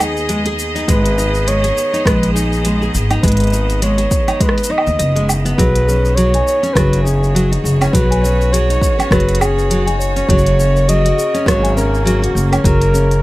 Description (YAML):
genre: folktronica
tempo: 102 BPM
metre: 4/4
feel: swing 56% on 16ths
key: G# minor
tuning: A4 = 439 Hz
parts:
  - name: mellow flugelhorn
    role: melody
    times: 0.0-13.2 s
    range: G#4 to D#5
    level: -19 LUFS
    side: equal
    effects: digital delay
  - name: clear string quartet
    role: sustained chords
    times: 0.0-13.2 s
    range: C#3 to D#5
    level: -25 LUFS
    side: right 1 dB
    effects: none
  - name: nylon-string guitar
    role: arpeggios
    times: 0.0-13.2 s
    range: F#3 to D#5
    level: -20 LUFS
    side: equal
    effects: vintage 12-bit sampler grit
  - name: upright bass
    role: bass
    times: 0.0-13.2 s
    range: F#1 to D#2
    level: -16 LUFS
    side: equal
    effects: none
  - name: organic electronic drum kit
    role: drums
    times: 0.0-13.2 s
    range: hi-hat, rim click, shaker, woodblock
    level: -22 LUFS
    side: right 1 dB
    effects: overdrive
  - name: electronic kick drum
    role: drums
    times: 0.9-12.8 s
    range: none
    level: -17 LUFS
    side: equal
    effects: overdrive
  - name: music box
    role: second line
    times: 5.6-13.0 s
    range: G#4 to G#5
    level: -24 LUFS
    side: left 4 dB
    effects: digital delay
room: little or no reverb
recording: none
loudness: -12 LUFS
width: side -18 dB against mid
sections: 0.0-13.2 A section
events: none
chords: 0.0 G#m; 5.6 Badd9; 10.3 F#